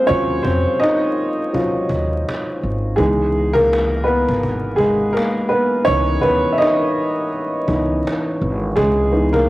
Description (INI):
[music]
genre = lo-fi hip hop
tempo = 83 BPM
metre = 4/4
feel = swing 59% on 16ths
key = C# dorian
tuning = A4 = 438 Hz
[part]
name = dark upright piano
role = accompaniment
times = 0.0-9.5 s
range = E3 to E5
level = -16 LUFS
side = equal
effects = low-pass filter, cassette tape
[part]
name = upright bass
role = bass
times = 0.1-9.5 s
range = G#1 to E#2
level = -22 LUFS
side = equal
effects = none
[part]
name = cajon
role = drums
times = 0.1-9.5 s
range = none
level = -28 LUFS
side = equal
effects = cassette tape
[sound]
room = light reverb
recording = home recording on cassette, vinyl crackle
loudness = -16 LUFS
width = side -17 dB against mid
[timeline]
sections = 0.0-9.5 A section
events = upright piano solo 0.0-9.5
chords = 0.0 D#m9; 3.0 C#m9